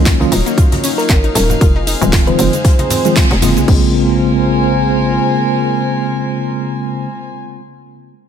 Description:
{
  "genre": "deep house",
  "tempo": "116 BPM",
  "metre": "4/4",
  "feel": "swing 56% on 16ths",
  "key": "Bb minor",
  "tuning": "A4 = 438 Hz",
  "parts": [
    { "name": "dark analog pad", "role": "sustained chords", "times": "0.0-7.1 s", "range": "Ab3 to C5", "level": "-24 LUFS", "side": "equal", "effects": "chorus, vintage 12-bit sampler grit, sidechain pumping" },
    { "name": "mellow tine electric piano", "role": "stabs", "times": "0.0-7.1 s", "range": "Db3 to F4", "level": "-16 LUFS", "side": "equal", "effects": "medium stereo tremolo, sidechain pumping, digital delay" },
    { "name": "hollow knocking FM bass", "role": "bass", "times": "0.0-5.2 s", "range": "Eb1 to Db2", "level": "-17 LUFS", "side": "equal", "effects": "sidechain pumping" },
    { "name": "warm chamber string section", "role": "texture", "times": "0.0-7.3 s", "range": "Gb3 to Ab5", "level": "-21 LUFS", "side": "left 1 dB", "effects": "sidechain pumping" },
    { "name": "analog pluck", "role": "arpeggios", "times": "0.1-3.9 s", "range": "Ab3 to F4", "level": "-24 LUFS", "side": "left 5 dB", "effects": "chorus, sidechain pumping, ping-pong delay" },
    { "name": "deep house drum kit", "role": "drums", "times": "0.1-3.8 s", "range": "cabasa, crash cymbal, handclaps, hi-hat, ride cymbal", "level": "-20 LUFS", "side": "equal", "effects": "small room ambience" },
    { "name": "electronic kick drum", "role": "drums", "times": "0.1-3.8 s", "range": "none", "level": "-12 LUFS", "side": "equal", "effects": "small room ambience" },
    { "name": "unplugged drum kit", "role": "drums", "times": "0.1-3.6 s", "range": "hi-hat, snare drum", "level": "-27 LUFS", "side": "left 3 dB", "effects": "high-pass filter on hats, small room ambience, high-pass filter on snare, high-pass filter on room" },
    { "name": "congas", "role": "percussion", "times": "0.2-3.5 s", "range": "none", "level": "-23 LUFS", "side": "right 2 dB", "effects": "none" },
    { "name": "thumb-piano-like synth pluck", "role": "melody", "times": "1.0-2.5 s", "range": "Bb4 to C5", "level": "-21 LUFS", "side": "right 2 dB", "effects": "chorus, tape echo" }
  ],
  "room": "light reverb, small room ambience",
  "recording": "none",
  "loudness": "-11 LUFS",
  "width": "side -8 dB against mid",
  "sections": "0.0-3.7 A section; 3.7-7.8 B section",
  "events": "drop 0.0-3.7; band accent 3.2",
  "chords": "0.0 Ebm9; 1.6 Fm7; 3.7 Bbm9",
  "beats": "0.06 0.58 1.09 | 1.61 2.13 2.65 3.16 | 3.68 4.20 4.71 5.23 | 5.75 6.27 6.78 7.30"
}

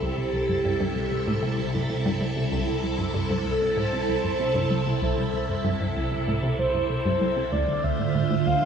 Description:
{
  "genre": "ambient, sequencer-driven space music",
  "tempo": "96 BPM",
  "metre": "4/4",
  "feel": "straight",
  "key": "unclear",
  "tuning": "A4 = 440 Hz",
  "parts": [
    { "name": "mellow horn-like synth lead", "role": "melody", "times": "0.0-8.7 s", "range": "G4 to F5", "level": "-28 LUFS", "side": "equal", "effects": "analog chorus, tape echo" },
    { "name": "phased string machine", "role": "sustained chords", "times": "0.0-8.7 s", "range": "C2 to C5", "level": "-26 LUFS", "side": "right 2 dB", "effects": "ensemble chorus, phaser" },
    { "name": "analog pluck", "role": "riff", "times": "0.0-8.7 s", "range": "C2 to G3", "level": "-28 LUFS", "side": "equal", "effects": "chorus, tape echo" }
  ],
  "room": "wet lush hall reverb, RT60 2.5 s",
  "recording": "none",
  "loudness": "-23 LUFS",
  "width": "side -7 dB against mid",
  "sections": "0.0-8.7 A section",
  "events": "filter sweep on synth arpeggio sound 0.0-8.7",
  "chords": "0.0 C6; 7.5 Dm7",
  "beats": "| 0.02 0.65 1.27 1.90 | 2.52 3.15 3.77 4.40 | 5.02 5.65 6.27 6.90 | 7.52 8.15"
}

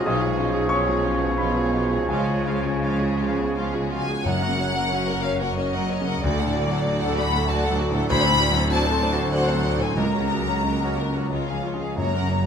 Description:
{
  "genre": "classical, romantic movement for piano and orchestra",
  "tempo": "81-100 BPM",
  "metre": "3/4",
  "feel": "rubato",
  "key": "F# major",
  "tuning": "A4 = 440 Hz",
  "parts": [
    { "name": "clear concert grand piano", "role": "melody", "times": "0.0-12.5 s", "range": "B1 to D#6", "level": "-25 LUFS", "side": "left 1 dB", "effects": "none" },
    { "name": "warm symphonic violin section", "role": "melody", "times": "0.0-12.5 s", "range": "B4 to B5", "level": "-28 LUFS", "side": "left 3 dB", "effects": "none" },
    { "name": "dark clarinet", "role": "second line", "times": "0.0-3.9 s", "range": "G#4", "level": "-31 LUFS", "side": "right 5 dB", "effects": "none" },
    { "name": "warm oboe", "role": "second line", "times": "0.0-3.9 s", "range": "C#5", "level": "-31 LUFS", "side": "right 2 dB", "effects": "none" },
    { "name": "warm symphonic violin section", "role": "second line", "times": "0.0-12.5 s", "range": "E#4 to F#5", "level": "-29 LUFS", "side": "left 2 dB", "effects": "none" },
    { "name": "warm bassoon", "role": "accompaniment", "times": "0.0-3.9 s", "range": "E#3", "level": "-33 LUFS", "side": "right 3 dB", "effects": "none" },
    { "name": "warm chamber viola section", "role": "accompaniment", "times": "0.0-12.5 s", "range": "E#3 to A#4", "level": "-32 LUFS", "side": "right 2 dB", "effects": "none" },
    { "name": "dark French horn section", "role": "sustained chords", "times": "0.0-3.5 s", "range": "G#3 to D#4", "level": "-31 LUFS", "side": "left 5 dB", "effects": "none" },
    { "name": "rich symphonic cello section", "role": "bass", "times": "0.0-12.5 s", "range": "C#2 to C#3", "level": "-31 LUFS", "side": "right 2 dB", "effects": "none" },
    { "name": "warm symphonic double bass section", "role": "bass", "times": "0.0-12.5 s", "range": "F#1 to D2", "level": "-30 LUFS", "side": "right 3 dB", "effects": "none" },
    { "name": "timpani", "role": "percussion", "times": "4.3-5.2, 10.0-12.5 s", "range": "F#2 to C#3", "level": "-30 LUFS", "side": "left 2 dB", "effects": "none" }
  ],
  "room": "light reverb",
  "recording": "close, detailed microphones",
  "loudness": "-20 LUFS",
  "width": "side -7 dB against mid",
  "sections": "0.0-4.3 A section; 4.3-12.5 B section",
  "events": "none",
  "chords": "0.1 C#7/B; 2.1 C#; 4.3 F#; 6.2 D; 8.1 D7; 10.0 F#/C#; 11.3 C#",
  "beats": "| 0.07 0.70 1.38 | 2.09 2.83 3.56 | 4.25 4.91 5.56 | 6.22 6.86 7.48 | 8.09 8.70 9.33 | 9.97 10.64 11.31 | 11.98"
}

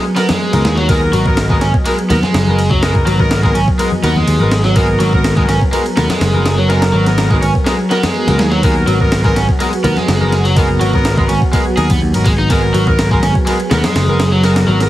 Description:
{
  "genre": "breakbeat, breaks",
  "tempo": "124 BPM",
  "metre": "4/4",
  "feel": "straight",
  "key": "G# minor",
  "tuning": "A4 = 440 Hz",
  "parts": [
    { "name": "lush unison pad", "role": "sustained chords", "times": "0.0-14.9 s", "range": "F#3 to D#5", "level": "-19 LUFS", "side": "right 1 dB", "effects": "chorus, sidechain pumping" },
    { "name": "overdriven semi-hollow guitar", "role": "riff", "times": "0.0-14.8 s", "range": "F#3 to G#4", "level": "-19 LUFS", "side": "equal", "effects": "phaser, digital delay" },
    { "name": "warm horn section", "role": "stabs", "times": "0.2-14.9 s", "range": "B3 to A#4", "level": "-19 LUFS", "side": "left 1 dB", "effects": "vintage 12-bit sampler grit, digital delay" },
    { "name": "breakbeat sampler-style drum kit", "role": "drums", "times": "0.2-14.9 s", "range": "kick drum, ride cymbal, snare drum", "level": "-16 LUFS", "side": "equal", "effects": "none" },
    { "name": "congas", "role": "percussion", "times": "0.3-14.2 s", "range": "none", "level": "-22 LUFS", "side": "left 1 dB", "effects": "none" },
    { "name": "picked electric bass", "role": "bass", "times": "0.5-14.9 s", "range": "F#1 to D#2", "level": "-15 LUFS", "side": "equal", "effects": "tube saturation" }
  ],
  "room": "light reverb",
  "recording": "heavily compressed radio sound, multiband compression, vinyl crackle",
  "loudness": "-11 LUFS",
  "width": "side -14 dB against mid",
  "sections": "0.0-14.9 A section",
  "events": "none",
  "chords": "0.0 G#m9",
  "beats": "0.41 | 0.89 1.37 1.86 2.34 | 2.83 3.31 3.79 4.28 | 4.76 5.24 5.73 6.21 | 6.70 7.18 7.66 8.15 | 8.63 9.12 9.60 10.08 | 10.57 11.05 11.53 12.02 | 12.50 12.99 13.47 13.95 | 14.44"
}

